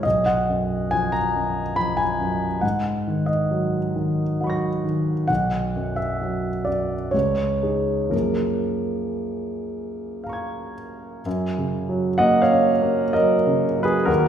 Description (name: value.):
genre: classical, impressionist solo piano.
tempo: 56-71 BPM.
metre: 3/4.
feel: rubato.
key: F# major.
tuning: A4 = 438 Hz.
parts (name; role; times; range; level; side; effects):
clear concert grand piano; solo; 0.0-14.3 s; B1 to A#6; -20 LUFS; equal; none.
room: wet recital hall reverb, RT60 1.3 s.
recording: heard from further back in the room.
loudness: -20 LUFS.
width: side -9 dB against mid.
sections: 0.0-11.3 A section; 11.3-14.3 A section.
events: none.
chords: 0.0 B5; 2.6 G#m11; 5.3 B5; 7.1 C#sus2; 8.1 F#maj9; 11.3 F#6.